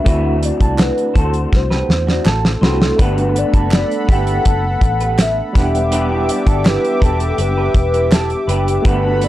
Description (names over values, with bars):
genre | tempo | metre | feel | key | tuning
indie pop, bedroom pop | 82 BPM | 4/4 | straight | unclear | A4 = 439 Hz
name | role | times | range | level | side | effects
warbly nostalgic lead | melody | 0.0-9.3 s | G4 to F#5 | -21 LUFS | left 1 dB | wide subtle chorus
electric guitar through a small old amp | accompaniment | 0.0-9.3 s | D3 to C5 | -24 LUFS | left 4 dB | ensemble chorus, vibrato effect
overdriven tine electric piano | accompaniment | 0.0-9.3 s | G3 to F#5 | -24 LUFS | right 2 dB | fast tremolo, cassette tape
electric guitar through a small old amp | second line | 0.1-9.0 s | D4 to B4 | -26 LUFS | right 5 dB | wide subtle chorus, tape echo
vintage muted fingered electric bass | bass | 0.1-9.3 s | E1 to E2 | -19 LUFS | equal | none
damped 70s drum kit | drums | 0.1-9.3 s | hi-hat, kick drum, snare drum | -15 LUFS | equal | none
group handclap | percussion | 0.8-8.3 s | none | -29 LUFS | right 2 dB | none
warm analog pad | sustained chords | 3.0-9.3 s | G4 to D6 | -24 LUFS | equal | chorus
room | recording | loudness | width
little or no reverb | dry, gritty hardware recording, transformer saturation, cassette tape | -13 LUFS | side -14 dB against mid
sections
0.0-9.3 A section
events
drum fill 1.5-3.0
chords
0.1 D9; 3.0 Gmaj9; 5.6 Em7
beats
| 0.06 0.79 1.53 2.26 | 2.99 3.72 4.46 5.19 | 5.92 6.65 7.38 8.12 | 8.85